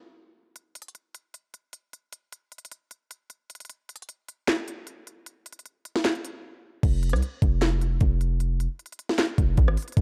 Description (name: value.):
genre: hip hop, trap.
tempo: 153 BPM.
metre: 4/4.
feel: half-time.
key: F minor.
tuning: A4 = 440 Hz.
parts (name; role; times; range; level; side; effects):
trap drum kit; drums; 0.6-10.0 s; crash cymbal, handclaps, hi-hat, kick drum, rim click, snare drum; -28 LUFS; equal; none.
distorted 808-style bass; bass; 6.8-10.0 s; F1 to C2; -26 LUFS; equal; distortion.
room: little or no reverb.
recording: dark, warm production.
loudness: -25 LUFS.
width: mono.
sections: 0.6-6.8 A section; 6.8-10.0 B section.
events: break 0.0-0.6, 6.4-6.8.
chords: none.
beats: 0.17 | 0.56 0.95 1.34 1.73 | 2.13 2.52 2.91 3.30 | 3.69 4.09 4.48 4.87 | 5.26 5.66 6.05 6.44 | 6.83 7.22 7.62 8.01 | 8.40 8.79 9.19 9.58 | 9.97.